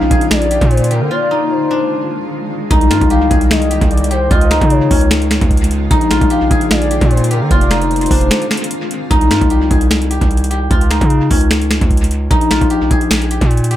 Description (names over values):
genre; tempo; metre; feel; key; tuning
hip hop, trap; 150 BPM; 4/4; half-time; C minor; A4 = 440 Hz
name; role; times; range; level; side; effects
guzheng; melody; 0.0-13.8 s; Db4 to Ab4; -17 LUFS; left 2 dB; dub echo
gliding portamento lead; second line; 0.0-8.7 s; Bb4 to F5; -20 LUFS; left 2 dB; chorus, dub echo
granular cloud pad; sustained chords; 0.0-9.1 s; Db3 to G5; -24 LUFS; equal; built-in reverb
distorted 808-style bass; bass; 0.0-13.8 s; F1 to D3; -15 LUFS; equal; distortion
booming analog drum machine; drums; 0.1-13.8 s; finger snaps, hi-hat, kick drum, snare drum; -14 LUFS; equal; overdrive, dub echo
room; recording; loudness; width
little or no reverb; echo-heavy mix; -11 LUFS; side -12 dB against mid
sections
0.0-9.1 A section; 9.1-13.8 B section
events
break 1.1-2.7, 8.3-9.1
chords
0.0 Bb; 1.1 Fm7; 2.7 Cm7; 4.3 Db; 5.9 Bb; 7.5 Fm7; 9.1 C5; 10.7 Dbadd9; 12.3 Bb5